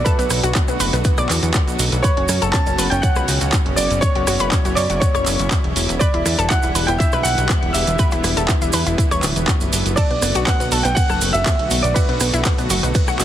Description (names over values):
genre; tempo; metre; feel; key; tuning
progressive house; 121 BPM; 4/4; straight; B minor; A4 = 441 Hz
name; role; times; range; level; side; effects
dark concert grand piano; melody; 0.0-12.7 s; B4 to A5; -24 LUFS; right 2 dB; ping-pong delay
soft round pluck; second line; 0.0-12.7 s; B5 to A6; -30 LUFS; left 1 dB; chorus, sidechain pumping, ping-pong delay
lush unison pad; sustained chords; 0.0-13.2 s; B2 to F#4; -26 LUFS; equal; chorus, sidechain pumping
plucky analog bass; bass; 0.0-13.2 s; D1 to F#2; -21 LUFS; equal; sidechain pumping
analog pluck; arpeggios; 0.1-13.2 s; B3 to D5; -25 LUFS; left 1 dB; chorus, sidechain pumping, ping-pong delay
electronic kick drum; drums; 0.1-13.1 s; none; -19 LUFS; equal; small room ambience
pop drum kit; drums; 0.1-13.2 s; handclaps, hi-hat, ride cymbal, rim click; -24 LUFS; right 1 dB; small room ambience
maracas; percussion; 0.1-13.2 s; none; -27 LUFS; right 5 dB; none
room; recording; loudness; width
light reverb; heavily compressed radio sound, multiband compression; -15 LUFS; side -11 dB against mid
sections
0.0-13.2 A section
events
none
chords
0.0 Bm7; 2.0 F#sus4; 6.0 Em7; 10.0 Bm7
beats
| 0.06 0.55 1.05 1.54 | 2.04 2.54 3.03 3.53 | 4.02 4.52 5.02 5.51 | 6.01 6.50 7.00 7.50 | 7.99 8.49 8.98 9.48 | 9.97 10.47 10.97 11.46 | 11.96 12.45 12.95